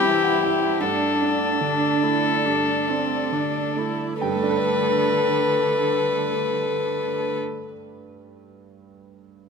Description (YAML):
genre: neoclassical piano and strings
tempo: 66-80 BPM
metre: 4/4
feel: rubato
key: G major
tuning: A4 = 440 Hz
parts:
  - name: rich violin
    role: melody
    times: 0.0-7.4 s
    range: G4 to B4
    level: -22 LUFS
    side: left 6 dB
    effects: none
  - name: dark cello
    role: second line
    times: 0.0-7.4 s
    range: D3 to E4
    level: -30 LUFS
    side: right 7 dB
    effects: none
  - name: clear upright piano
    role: accompaniment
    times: 0.0-9.5 s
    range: G2 to B5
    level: -29 LUFS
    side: right 6 dB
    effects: none
  - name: dark viola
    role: accompaniment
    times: 0.0-7.4 s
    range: C4 to A4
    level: -28 LUFS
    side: right 1 dB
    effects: none
  - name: dark chamber string section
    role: sustained chords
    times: 0.0-7.4 s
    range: G3 to D5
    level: -31 LUFS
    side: right 2 dB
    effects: none
room: light reverb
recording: minimal, uncompressed stereo recording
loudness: -20 LUFS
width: side -5 dB against mid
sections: 0.0-4.2 A section; 4.2-7.7 B section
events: slowing down 0.0-4.2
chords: 0.0 C/G; 0.8 D/G; 4.2 Gadd9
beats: 0.03 | 0.80 1.60 2.44 3.32 | 4.21 5.09 5.96 6.81